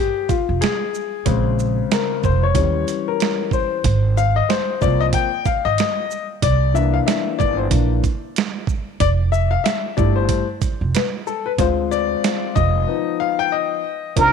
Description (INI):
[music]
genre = hip hop, jazz-hop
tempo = 93 BPM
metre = 4/4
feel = swing 59% on 16ths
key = unclear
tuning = A4 = 439 Hz
[part]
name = warm upright piano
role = accompaniment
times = 0.0-14.3 s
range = Db3 to G5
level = -20 LUFS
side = left 11 dB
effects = none
[part]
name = dusty soul sampler-style drum kit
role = drums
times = 0.3-14.3 s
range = hi-hat, kick drum, shaker, snare drum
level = -22 LUFS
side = right 7 dB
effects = none
[part]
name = upright bass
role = bass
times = 0.5-14.3 s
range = F1 to Eb2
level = -19 LUFS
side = right 2 dB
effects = none
[part]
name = trumpet with plunger mute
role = melody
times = 14.2-14.3 s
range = Bb4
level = -12 LUFS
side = right 4 dB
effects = none
[sound]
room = light reverb, small room ambience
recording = 1960s-style stereo with parts hard left and right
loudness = -17 LUFS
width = side -6 dB against mid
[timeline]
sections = 0.0-14.2 A section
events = upright piano solo 0.0-14.2; break 12.9-14.2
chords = 0.0 Fmadd9; 1.3 Bbm9; 2.6 Eb7b9; 3.8 Ab69; 6.4 C7; 9.0 Fmaj7; 11.6 Dm7b5; 12.9 G7b13/F (rootless)